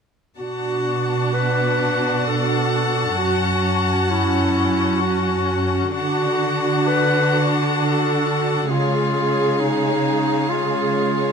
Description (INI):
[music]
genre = cinematic, emotional film score for orchestra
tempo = 66 BPM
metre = 3/4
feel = rubato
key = B minor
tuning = A4 = 442 Hz
[part]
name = rich studio violin section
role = second line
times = 0.4-11.3 s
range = C#5 to A5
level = -25 LUFS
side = left 4 dB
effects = none
[part]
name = warm clarinet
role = second line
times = 0.4-11.3 s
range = D#4 to B4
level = -22 LUFS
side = left 1 dB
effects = none
[part]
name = rich studio viola section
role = accompaniment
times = 0.4-11.3 s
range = G#3 to G#4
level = -22 LUFS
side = right 1 dB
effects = none
[part]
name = warm studio cello section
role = bass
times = 0.4-11.3 s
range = F#2 to D3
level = -23 LUFS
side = right 2 dB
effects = none
[sound]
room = moderate scoring stage reverb, RT60 1.6 s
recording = close, detailed microphones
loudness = -17 LUFS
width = side -6 dB against mid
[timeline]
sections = 0.4-11.3 A section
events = none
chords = 0.4 Bm7; 3.2 F#m; 5.9 D; 8.7 C#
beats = | 0.38 1.35 2.27 | 3.19 4.11 5.02 | 5.93 6.88 7.79 | 8.70 9.61 10.51